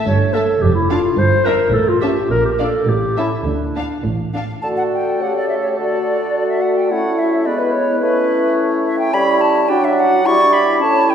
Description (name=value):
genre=quick classical-period movement for symphony orchestra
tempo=107 BPM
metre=2/4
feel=straight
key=D minor, D major from 4.6 s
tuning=A4 = 441 Hz
part: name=dark studio violin section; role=melody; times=0.0-4.4 s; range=F5 to Bb5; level=-32 LUFS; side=left 2 dB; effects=none
part: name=clear studio violin section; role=second line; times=0.0-4.4 s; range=D5 to F5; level=-30 LUFS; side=left 2 dB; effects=none
part: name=warm chamber viola section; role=accompaniment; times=0.0-4.4 s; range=A3 to D4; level=-27 LUFS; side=right 1 dB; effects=none
part: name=warm clarinet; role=second line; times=0.1-11.1 s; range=D4 to C#5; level=-19 LUFS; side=left 1 dB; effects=none
part: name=dark studio double bass section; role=bass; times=0.1-4.5 s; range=F1 to D2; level=-22 LUFS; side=right 3 dB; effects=none
part: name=warm studio cello section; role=bass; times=0.1-4.5 s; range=F2 to D3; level=-22 LUFS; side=right 3 dB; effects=none
part: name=bright silver concert flute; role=second line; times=4.6-11.1 s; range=B4 to C#6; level=-18 LUFS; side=equal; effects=none
part: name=warm oboe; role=second line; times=4.6-11.1 s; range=A4 to D5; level=-25 LUFS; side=right 1 dB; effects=none
part: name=mellow bassoon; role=accompaniment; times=4.6-11.1 s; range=A2 to A3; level=-19 LUFS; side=right 3 dB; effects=none
part: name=warm French horn section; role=sustained chords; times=4.6-11.1 s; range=A3 to G4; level=-21 LUFS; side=left 2 dB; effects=none
room=wet scoring stage reverb, RT60 2.0 s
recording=heard from further back in the room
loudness=-14 LUFS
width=side -8 dB against mid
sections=0.0-4.6 A section; 4.6-11.1 A section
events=none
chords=0.1 A7/G; 0.6 Dm/F; 1.2 Em7b5/G (rootless); 1.7 A; 2.3 Bb; 2.9 A7; 3.5 D5; 4.6 D; 5.2 A7/C#; 5.8 D; 6.9 A; 7.5 E/G#; 8.0 A; 9.1 A7/G; 9.7 D/F#; 10.3 Em7/G